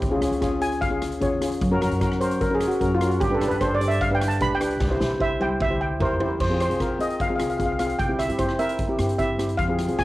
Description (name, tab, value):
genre	calypso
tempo	151 BPM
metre	4/4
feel	straight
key	F harmonic minor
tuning	A4 = 440 Hz
part	upright bass	bass	0.0-10.0 s	C2 to G2	-28 LUFS	equal	none
part	street-band drum kit	drums	0.0-10.0 s	crash cymbal, hi-hat, kick drum, rim click, snare drum, toms	-29 LUFS	equal	none
part	steel pan	accompaniment	0.1-10.0 s	C4 to D5	-25 LUFS	left 1 dB	cassette tape
part	steel pan	melody	0.6-10.0 s	F4 to B5	-26 LUFS	equal	cassette tape
room	light reverb, studio reverb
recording	home recording on cassette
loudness	-21 LUFS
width	side -17 dB against mid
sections	0.0-6.4 A section; 6.4-10.0 B section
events	steel pan solo 0.0-6.4; drum fill 4.8-6.4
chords	0.0 Db; 1.6 Gb; 3.2 G; 4.8 C; 6.4 Fm; 8.0 C